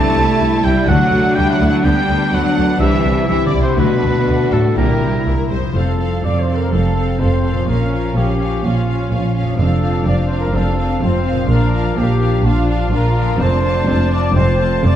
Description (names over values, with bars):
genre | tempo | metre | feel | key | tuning
cinematic, heroic adventure film score | 125 BPM | 4/4 | straight | F major from 5.8 s | A4 = 440 Hz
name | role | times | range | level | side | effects
clear symphonic violin section | melody | 0.0-15.0 s | A4 to A5 | -27 LUFS | left 1 dB | none
warm oboe | second line | 0.0-5.3 s | A4 to A5 | -21 LUFS | right 2 dB | none
warm symphonic violin section | second line | 0.0-15.0 s | Bb3 to C5 | -27 LUFS | left 2 dB | none
clear symphonic viola section | accompaniment | 0.0-15.0 s | D3 to A4 | -25 LUFS | right 1 dB | none
mellow French horn section | sustained chords | 0.0-15.0 s | F3 to G4 | -22 LUFS | left 3 dB | none
concert harp | arpeggios | 0.0-15.0 s | F2 to B5 | -24 LUFS | left 4 dB | none
clear studio cello section | bass | 0.0-15.0 s | F2 to A3 | -21 LUFS | right 1 dB | none
bright symphonic double bass section | bass | 0.2-15.0 s | F1 to D2 | -18 LUFS | right 1 dB | none
dark trumpet section | stabs | 5.8-15.0 s | F4 to D5 | -22 LUFS | equal | none
room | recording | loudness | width
wet recital hall reverb, RT60 1.6 s | dark, warm production | -13 LUFS | side -10 dB against mid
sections
0.0-5.8 A section; 5.8-15.0 B section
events
none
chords
0.0 C; 0.9 D; 1.8 G/D; 2.8 C; 3.8 D; 4.8 C7; 5.8 F; 7.7 Bbm; 9.6 F; 11.5 Bb; 13.4 F